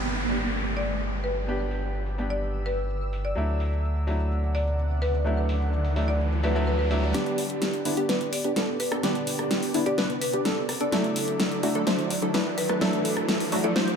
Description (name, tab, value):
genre	EDM, festival progressive house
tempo	127 BPM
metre	4/4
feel	straight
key	G major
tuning	A4 = 440 Hz
part	clear concert grand piano	accompaniment	0.0-14.0 s	D3 to G4	-32 LUFS	left 1 dB	digital delay
part	lush unison pad	sustained chords	0.5-14.0 s	F#3 to E6	-36 LUFS	right 1 dB	chorus
part	saturated sub bass	bass	0.0-7.1 s	G1 to D2	-27 LUFS	equal	none
part	downlifter and riser	sound effects	0.0-14.0 s	none	-34 LUFS	right 1 dB	none
part	big-room dance drum kit	drums	0.1-14.0 s	cabasa, hi-hat, rim click, snare drum	-29 LUFS	left 1 dB	low-pass filter on hats, low-pass filter on perc, low-pass filter on cymbals, low-pass filter on snare, low-pass filter on room
part	marimba with medium hard mallets	melody	0.8-14.0 s	B4 to D5	-33 LUFS	left 1 dB	digital delay
part	plucky unison lead	arpeggios	7.1-14.0 s	E4 to C5	-32 LUFS	equal	vintage 12-bit sampler grit, digital delay
part	supersaw stab	riff	7.1-14.0 s	F#3 to C5	-30 LUFS	equal	low-pass filter, digital delay
room	light reverb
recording	none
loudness	-24 LUFS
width	side -6 dB against mid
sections	0.0-7.1 A section; 7.1-14.0 B section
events	riser 4.7-7.1, 7.1-14.0; build-up 7.1-14.0; drum fill 7.1-14.0; filter sweep on supersaw synth 7.1-14.0; filter sweep on digital synth lead 7.1-14.0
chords	0.0 G; 3.4 Dadd9; 7.1 G; 10.9 Dadd9